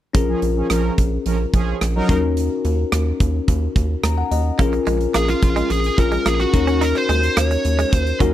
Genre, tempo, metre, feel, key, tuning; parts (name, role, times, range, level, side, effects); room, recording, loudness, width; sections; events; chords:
1980s-style pop; 108 BPM; 4/4; straight; Bb minor; A4 = 436 Hz
bell-like tine electric piano; accompaniment; 0.1-8.3 s; Db4 to Bb5; -22 LUFS; left 6 dB; analog chorus
rubbery square bass; bass; 0.1-8.3 s; Bb1 to Eb2; -21 LUFS; right 1 dB
big rock drum kit; drums; 0.1-8.3 s; hi-hat, kick drum, rim click; -21 LUFS; right 1 dB
analog synth brass; stabs; 0.3-2.2 s; F3 to Bb4; -24 LUFS; right 3 dB; chorus
direct-recorded clean electric guitar; riff; 4.6-8.3 s; F3 to Eb4; -26 LUFS; right 7 dB; lush chorus, slapback echo
fuzz lead guitar; melody; 5.2-8.2 s; F4 to Db5; -21 LUFS; right 2 dB; distortion, slapback echo
studio reverb; dry, close 1970s-style studio recording; -16 LUFS; side -12 dB against mid
0.1-4.6 A section; 4.6-8.3 B section
tine electric piano fill 3.8-4.6
0.1 Bbm7; 2.1 Ebm7; 4.6 Bbm7; 6.5 Ebm7